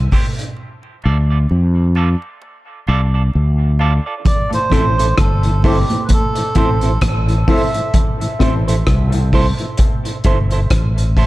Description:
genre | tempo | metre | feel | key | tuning
dub reggae | 65 BPM | 4/4 | swing 57% on 16ths | A minor | A4 = 439 Hz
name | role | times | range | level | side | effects
fretless electric bass | bass | 0.0-11.3 s | G1 to F2 | -14 LUFS | equal | none
semi-hollow electric guitar | accompaniment | 0.1-11.3 s | E4 to D5 | -25 LUFS | right 5 dB | spring reverb, high-pass filter, dub echo
dark upright piano | stabs | 0.1-8.6 s | C4 to A4 | -27 LUFS | left 5 dB | high-pass filter, dub echo
vintage drum kit | drums | 0.1-11.3 s | hi-hat, kick drum, rim click | -17 LUFS | equal | none
congas | percussion | 0.1-8.2 s | none | -26 LUFS | right 4 dB | high-pass filter on perc, dub echo
melodica | melody | 4.3-8.0 s | G4 to E5 | -22 LUFS | right 1 dB | dub echo
mellow tonewheel organ | accompaniment | 4.5-11.3 s | A2 to E4 | -27 LUFS | left 1 dB | none
room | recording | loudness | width
small room ambience | dark, warm production | -13 LUFS | side -18 dB against mid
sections
0.0-11.3 A section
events
break 0.0-4.3; filter sweep 0.0-4.3, 7.9-11.3; part muted 0.6-4.3, 7.9-11.3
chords
0.0 C; 0.6 Dm; 4.3 Am

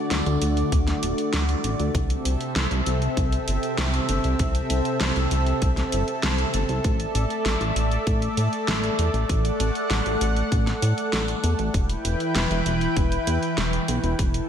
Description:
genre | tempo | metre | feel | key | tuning
synthwave | 98 BPM | 4/4 | straight | unclear | A4 = 438 Hz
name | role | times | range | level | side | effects
lush unison pad | sustained chords | 0.0-14.5 s | C3 to G5 | -25 LUFS | equal | chorus, sidechain pumping
chorused synth bass | bass | 0.1-14.4 s | D1 to A2 | -24 LUFS | equal | none
pop drum kit | drums | 0.1-14.5 s | hi-hat, snare drum | -29 LUFS | equal | none
electronic kick drum | drums | 0.7-14.3 s | none | -25 LUFS | equal | none
room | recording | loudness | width
moderate plate reverb, RT60 2.1 s | dreamy mix soaked in reverb | -21 LUFS | side -8 dB against mid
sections
0.0-14.5 A section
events
none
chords
0.0 D; 1.9 C6; 6.8 Asus4; 11.7 Em

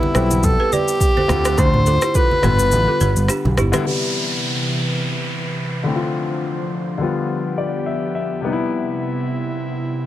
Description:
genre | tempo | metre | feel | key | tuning
afrobeats | 105 BPM | 4/4 | swing 55% on 16ths | C major | A4 = 440 Hz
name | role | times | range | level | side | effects
breathy tenor saxophone | melody | 0.0-3.6 s | E4 to C5 | -19 LUFS | equal | digital delay
warm concert grand piano | accompaniment | 0.0-10.1 s | C3 to E5 | -24 LUFS | left 4 dB | low-pass filter
congas | percussion | 0.0-3.7 s | none | -27 LUFS | right 2 dB | none
afro-pop drum kit | drums | 0.1-3.9 s | kick drum, rim click, shaker, toms | -20 LUFS | equal | none
balafon | riff | 0.2-3.8 s | D4 to D5 | -25 LUFS | right 4 dB | digital delay
picked electric bass | bass | 0.2-3.7 s | G1 to D2 | -18 LUFS | equal | none
airy breathy pad | sustained chords | 4.1-10.1 s | C3 to C5 | -25 LUFS | right 1 dB | chorus, low-pass filter
downlifter | sound effects | 3.9-8.4 s | none | -27 LUFS | right 1 dB | none
room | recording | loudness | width
small room ambience | none | -17 LUFS | side -13 dB against mid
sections
0.0-3.9 A section; 3.9-10.1 B section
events
kick muted 2.7-3.9; filter sweep 3.9-10.1; grand piano fill 7.3-8.4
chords
0.0 Cmaj7; 1.3 Dm7; 2.4 G7; 3.9 Cmaj7; 5.9 Dm7; 7.0 G7; 8.4 Cmaj7

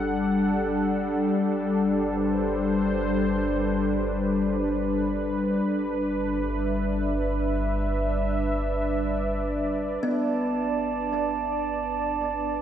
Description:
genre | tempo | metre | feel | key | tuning
ambient | free time | none | none | G major | A4 = 440 Hz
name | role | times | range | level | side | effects
warm analog pad | sustained chords | 0.0-12.6 s | G3 to F#5 | -24 LUFS | left 1 dB | chorus
warm sub bass | bass | 0.0-12.6 s | G1 | -33 LUFS | right 1 dB | none
kalimba | arpeggios | 10.0-12.6 s | B3 | -30 LUFS | equal | tape echo
glass harmonica | texture | 10.1-12.6 s | A5 | -29 LUFS | right 12 dB | none
room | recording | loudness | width
wet cathedral reverb, RT60 5.3 s | in a vast, echoing space | -23 LUFS | side -10 dB against mid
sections
0.0-10.0 A section; 10.0-12.6 A section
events
none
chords
0.0 Bm7/G (rootless); 1.4 Amadd9/G; 5.7 G6

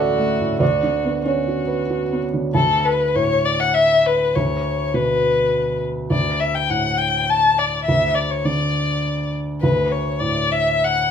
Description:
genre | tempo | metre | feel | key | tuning
neoclassical piano and strings | 91-104 BPM | 3/4 | rubato | D major | A4 = 440 Hz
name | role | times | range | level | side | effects
muted violin | melody | 0.0-11.1 s | F#4 to A5 | -19 LUFS | left 4 dB | none
felt-muted upright piano | accompaniment | 0.0-11.1 s | D2 to F#5 | -21 LUFS | right 2 dB | none
room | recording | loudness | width
moderate large studio reverb, RT60 0.9 s | band playing live in one room | -17 LUFS | side -8 dB against mid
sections
0.0-2.5 A section; 2.5-11.1 B section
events
none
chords
0.0 Dmaj7; 0.6 Bmadd9/D; 2.5 D5; 4.4 Bmadd9/D; 6.1 D5; 7.9 N.C.; 9.6 D5

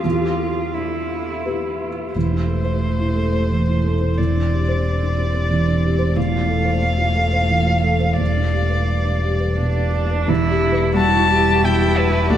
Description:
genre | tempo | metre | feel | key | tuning
neoclassical piano and strings | 88 BPM | 3/4 | rubato | E phrygian | A4 = 440 Hz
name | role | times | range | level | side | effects
muted cello | second line | 0.0-12.4 s | G3 to G4 | -24 LUFS | right 3 dB | tape echo
felt-muted upright piano | accompaniment | 0.0-12.4 s | D2 to C5 | -22 LUFS | equal | wide subtle chorus
muted violin | melody | 2.1-12.4 s | B4 to A5 | -22 LUFS | left 1 dB | tape echo
sub bass with octave | bass | 2.1-12.4 s | E1 to D2 | -20 LUFS | equal | none
room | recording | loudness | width
moderate huge ambient reverb, RT60 8.6 s | dreamy mix soaked in reverb | -16 LUFS | side -10 dB against mid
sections
0.0-2.1 A section; 2.1-10.3 B section; 10.3-12.4 C section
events
none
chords
0.0 Em7; 2.1 Am/E; 4.2 Cadd9/E; 6.2 Fmaj7/E; 8.2 Em7; 10.3 Em

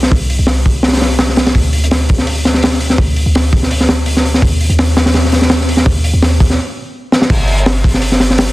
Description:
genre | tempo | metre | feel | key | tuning
drum and bass, jungle | 167 BPM | 4/4 | straight | unclear | A4 = 440 Hz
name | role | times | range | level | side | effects
warm 808-style bass | bass | 0.0-8.5 s | G1 to Eb2 | -14 LUFS | equal | none
crunchy breakbeat drum kit | drums | 0.0-8.5 s | crash cymbal, hi-hat, kick drum, snare drum | -12 LUFS | equal | none
room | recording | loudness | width
light reverb | dense, heavily limited modern master, vinyl crackle | -10 LUFS | side -18 dB against mid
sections
0.0-7.3 A section; 7.3-8.5 B section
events
build-up 0.0-7.3; stop 6.6-7.3; drum fill 7.1; drop 7.3-8.5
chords
none

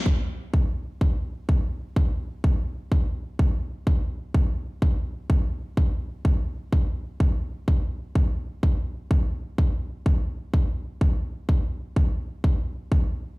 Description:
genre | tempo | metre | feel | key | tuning
EDM | 126 BPM | 4/4 | straight | none | none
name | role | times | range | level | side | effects
electronic kick drum | drums | 0.1-13.0 s | none | -21 LUFS | equal | none
room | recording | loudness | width
digital ambience | played on a big sound system in a bare room, large studio reverb | -23 LUFS | side -24 dB against mid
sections
0.1-13.4 A section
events
none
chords
none

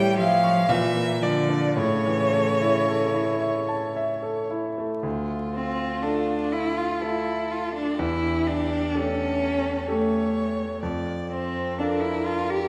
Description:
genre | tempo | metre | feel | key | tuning
classical, slow romantic movement for piano trio | 54-64 BPM | 3/4 | rubato | D minor | A4 = 441 Hz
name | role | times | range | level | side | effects
clear violin | melody | 0.0-12.7 s | F4 to G5 | -30 LUFS | equal | none
rich cello | second line | 0.0-12.7 s | C#3 to G4 | -29 LUFS | equal | none
clear grand piano | accompaniment | 0.0-12.7 s | D2 to C#6 | -29 LUFS | equal | none
room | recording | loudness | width
wet scoring stage reverb, RT60 1.7 s | vinyl crackle | -25 LUFS | mono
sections
0.0-5.0 A section; 5.0-12.7 B section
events
none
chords
0.0 A7; 0.7 Bb; 1.8 A; 5.0 Dm; 8.0 A7/E; 10.8 Dm/F

